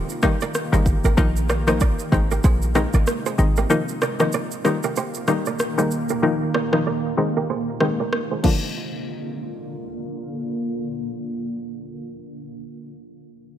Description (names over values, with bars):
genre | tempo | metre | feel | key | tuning
afrobeats | 95 BPM | 4/4 | swing 58% on 16ths | Bb mixolydian | A4 = 441 Hz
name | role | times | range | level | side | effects
granular cloud pad | sustained chords | 0.0-12.0 s | C3 to G4 | -28 LUFS | right 1 dB | built-in reverb, low-pass filter
kora | riff | 0.0-8.8 s | F4 to Eb5 | -27 LUFS | right 8 dB | low-pass filter, digital delay
afro-pop drum kit | drums | 0.1-8.6 s | crash cymbal, kick drum, rim click, shaker | -24 LUFS | equal | none
hollow square pluck | accompaniment | 0.2-12.2 s | D3 to Eb4 | -23 LUFS | left 4 dB | chorus, low-pass filter
short 808-style bass | bass | 0.7-3.7 s | G1 to Bb1 | -20 LUFS | equal | none
room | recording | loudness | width
light reverb | none | -19 LUFS | side -10 dB against mid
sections
0.0-8.8 A section; 8.8-11.3 B section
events
filter sweep 0.0-8.8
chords
0.0 Eb; 1.2 Bbsus4; 2.1 Ab; 3.7 Bbsus4; 4.6 Eb; 6.2 Bbsus4; 7.2 Ab; 8.4 Bb